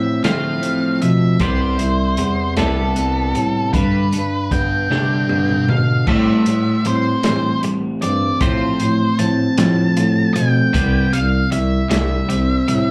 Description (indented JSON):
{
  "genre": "indie rock",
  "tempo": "51 BPM (dotted quarters)",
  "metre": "6/8",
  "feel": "straight",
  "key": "C major",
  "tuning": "A4 = 440 Hz",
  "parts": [
    { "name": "octave-fuzz lead guitar", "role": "melody", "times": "0.0-12.9 s", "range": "A4 to A5", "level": "-25 LUFS", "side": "equal", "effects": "distortion, slapback echo" },
    { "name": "electric guitar through a small old amp", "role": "riff", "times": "0.0-12.9 s", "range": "G2 to E4", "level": "-22 LUFS", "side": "equal", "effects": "slapback echo" },
    { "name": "twelve-string electric guitar", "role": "riff", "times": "0.0-12.9 s", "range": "G2 to C4", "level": "-25 LUFS", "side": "equal", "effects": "analog chorus, slapback echo" },
    { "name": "dark bass clarinet", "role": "bass", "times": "0.0-12.9 s", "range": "C2 to D3", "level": "-23 LUFS", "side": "equal", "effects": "none" },
    { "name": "vintage drum kit", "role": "drums", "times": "0.2-12.9 s", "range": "crash cymbal, hi-hat, kick drum, snare drum, toms", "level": "-25 LUFS", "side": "equal", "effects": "none" }
  ],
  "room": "little or no reverb",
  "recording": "live gig heard through the venue's PA, club ambience",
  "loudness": "-17 LUFS",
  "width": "mono",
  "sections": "0.0-6.1 A section; 6.1-12.9 B section",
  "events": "drum fill 4.9-6.1",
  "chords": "0.0 Fmaj7/A; 1.4 Cmaj7; 3.7 G; 6.1 Am7; 8.4 F/A; 10.7 Cmaj7"
}